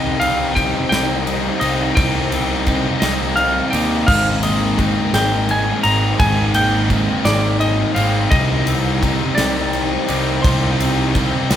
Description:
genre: post-rock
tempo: 57 BPM (dotted quarters)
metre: 6/8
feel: straight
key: C minor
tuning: A4 = 442 Hz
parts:
  - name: clean lap steel guitar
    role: melody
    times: 0.0-11.6 s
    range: C5 to Bb5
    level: -21 LUFS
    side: equal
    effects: none
  - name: warbly tape-like pad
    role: sustained chords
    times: 0.0-11.6 s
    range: C4 to C5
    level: -31 LUFS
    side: equal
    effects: none
  - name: clean electric guitar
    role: arpeggios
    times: 0.0-11.6 s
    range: C3 to D5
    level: -25 LUFS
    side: equal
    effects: spring reverb
  - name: crunchy overdriven guitar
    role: riff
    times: 0.0-11.6 s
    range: Ab2 to Eb4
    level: -23 LUFS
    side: right 6 dB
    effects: none
  - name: tight distorted guitar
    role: riff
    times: 0.0-11.6 s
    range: Ab2 to Eb4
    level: -23 LUFS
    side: left 9 dB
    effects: distortion
  - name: fuzz picked electric bass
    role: bass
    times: 0.0-11.6 s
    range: Ab1 to Eb2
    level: -22 LUFS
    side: equal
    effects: overdrive
  - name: huge arena drum kit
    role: drums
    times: 0.2-11.6 s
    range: crash cymbal, kick drum, ride cymbal, snare drum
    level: -21 LUFS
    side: equal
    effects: none
room: light reverb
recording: band playing live in one room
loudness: -14 LUFS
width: side -10 dB against mid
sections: 0.0-11.6 A section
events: none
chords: 0.0 Cm; 4.1 Abadd9; 8.3 Cmadd9

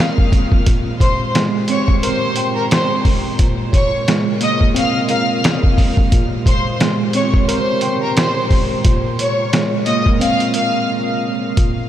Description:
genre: hip hop, boom-bap hip-hop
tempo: 88 BPM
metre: 4/4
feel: swing 58% on 16ths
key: Bb dorian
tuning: A4 = 439 Hz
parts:
  - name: tine electric piano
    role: accompaniment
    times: 0.0-11.9 s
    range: Bb2 to G5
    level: -20 LUFS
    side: right 2 dB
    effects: overdrive, fast stereo tremolo, high-pass filter, low-pass filter
  - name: dark analog pad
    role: sustained chords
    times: 0.1-11.5 s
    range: Bb2 to C5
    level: -27 LUFS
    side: right 1 dB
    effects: chorus, high-pass filter, low-pass filter
  - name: trip hop sampler-style drum kit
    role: drums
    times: 0.0-11.8 s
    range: hi-hat, kick drum, rim click, snare drum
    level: -16 LUFS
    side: equal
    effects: none
  - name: rich studio violin section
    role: melody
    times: 1.0-10.9 s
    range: Bb4 to F6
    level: -20 LUFS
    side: left 1 dB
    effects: high-pass filter, low-pass filter, diffuse ambient delay
room: moderate huge ambient reverb, RT60 7.2 s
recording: dreamy mix soaked in reverb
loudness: -14 LUFS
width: side -11 dB against mid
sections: 0.0-11.6 A section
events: break 10.9-11.6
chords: 0.0 Bbm9; 0.7 Abmaj7/Bb; 3.4 Bbm9; 6.1 Abmaj7/Bb; 8.8 Bbm9

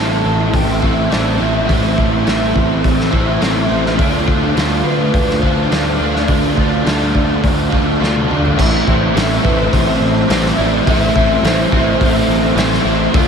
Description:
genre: rock, shoegaze and dream pop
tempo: 104 BPM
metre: 4/4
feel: straight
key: A minor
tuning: A4 = 440 Hz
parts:
  - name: pure sine lead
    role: melody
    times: 0.0-12.9 s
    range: B4 to A5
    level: -24 LUFS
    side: equal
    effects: chorus, ping-pong delay
  - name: overdriven electric guitar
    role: riff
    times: 0.0-13.3 s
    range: A2 to F4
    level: -15 LUFS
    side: equal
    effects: ensemble chorus
  - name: fuzz picked electric bass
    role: bass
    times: 0.0-13.3 s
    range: A1 to D2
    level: -19 LUFS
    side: equal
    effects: overdrive
  - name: loose indie drum kit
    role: drums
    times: 0.5-13.3 s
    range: crash cymbal, hi-hat, kick drum, snare drum, toms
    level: -18 LUFS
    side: equal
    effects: none
room: moderate huge ambient reverb, RT60 9.5 s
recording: dreamy mix soaked in reverb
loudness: -12 LUFS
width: side -6 dB against mid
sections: 0.0-8.6 A section; 8.6-13.3 B section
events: drum fill 8.0-8.6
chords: 0.0 Am; 4.0 Dm; 8.6 Am

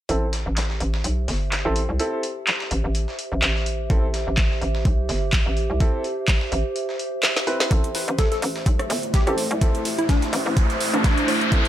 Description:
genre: bass house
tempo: 126 BPM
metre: 4/4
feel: swing 56% on 16ths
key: A minor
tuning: A4 = 440 Hz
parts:
  - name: clear concert grand piano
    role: stabs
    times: 0.1-11.7 s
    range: C4 to B4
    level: -28 LUFS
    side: right 1 dB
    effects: sidechain pumping, low-pass filter, ping-pong delay
  - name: hollow knocking FM bass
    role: bass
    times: 0.1-11.7 s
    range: G1 to C2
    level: -25 LUFS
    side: equal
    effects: overdrive, sidechain pumping, high-pass filter
  - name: dusty soul sampler-style drum kit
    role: drums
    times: 0.1-11.6 s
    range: hi-hat, snare drum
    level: -32 LUFS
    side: equal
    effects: overdrive, sidechain pumping on hats, high-pass filter on hats, high-pass filter on snare, high-pass filter on room
  - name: warbly tape-like pad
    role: texture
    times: 0.6-11.7 s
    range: G4 to E5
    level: -30 LUFS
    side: right 1 dB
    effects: chorus, built-in reverb, sidechain pumping
  - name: garage drum kit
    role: drums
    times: 0.6-11.7 s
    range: handclaps, hi-hat, rim click, snare drum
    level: -25 LUFS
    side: equal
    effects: overdrive, low-pass filter on snare, low-pass filter on hats
  - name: electronic kick drum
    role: drums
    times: 3.9-11.6 s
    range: none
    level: -20 LUFS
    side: equal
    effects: overdrive
  - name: dark analog pad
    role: sustained chords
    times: 8.5-11.7 s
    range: A3 to C5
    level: -29 LUFS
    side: equal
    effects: chorus, sidechain pumping
  - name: riser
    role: sound effects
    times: 8.9-11.7 s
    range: none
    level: -27 LUFS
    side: equal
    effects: none
  - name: plucky unison lead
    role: melody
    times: 8.2-11.6 s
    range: D4 to A4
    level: -27 LUFS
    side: equal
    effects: ping-pong delay
room: light reverb, digital ambience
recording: none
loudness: -20 LUFS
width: side -12 dB against mid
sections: 0.1-7.7 A section; 7.7-11.7 B section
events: drum fill 7.2-7.7; build-up 7.7-11.7; riser 8.9-11.7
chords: 0.1 Am

